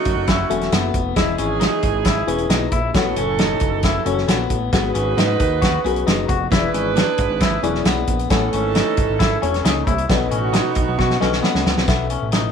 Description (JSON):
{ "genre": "uptempo 1960s-style soul", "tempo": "134 BPM", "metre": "4/4", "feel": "straight", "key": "B mixolydian", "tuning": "A4 = 442 Hz", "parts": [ { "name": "warm saxophone section", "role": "second line", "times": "0.0-11.6 s", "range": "E3 to B4", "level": "-24 LUFS", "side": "right 14 dB", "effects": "none" }, { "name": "reed electric piano", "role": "accompaniment", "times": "0.0-12.5 s", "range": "G#2 to G#5", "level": "-25 LUFS", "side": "left 11 dB", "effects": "fast tremolo" }, { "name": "clean electric guitar", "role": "riff", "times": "0.0-12.5 s", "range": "B3 to F#4", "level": "-24 LUFS", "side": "left 10 dB", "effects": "none" }, { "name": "fat analog bass", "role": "bass", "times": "0.1-12.5 s", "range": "E1 to B2", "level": "-24 LUFS", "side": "right 1 dB", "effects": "none" }, { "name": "natural country drum kit", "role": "drums", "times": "0.1-12.4 s", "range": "hi-hat, kick drum, snare drum", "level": "-20 LUFS", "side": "right 1 dB", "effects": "none" }, { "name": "congas", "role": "percussion", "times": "0.3-11.8 s", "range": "none", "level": "-32 LUFS", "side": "right 12 dB", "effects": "none" } ], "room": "moderate spring reverb, RT60 2.0 s, small room reverb", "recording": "1960s-style stereo with parts hard left and right", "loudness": "-16 LUFS", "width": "side -7 dB against mid", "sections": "0.0-11.9 A section", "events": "drum fill 11.0-11.9", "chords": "0.0 F#m7; 1.2 Emaj7; 2.9 A6; 4.7 G#m7; 6.5 E7; 8.3 Amaj7; 10.1 B7; 11.9 B7sus4" }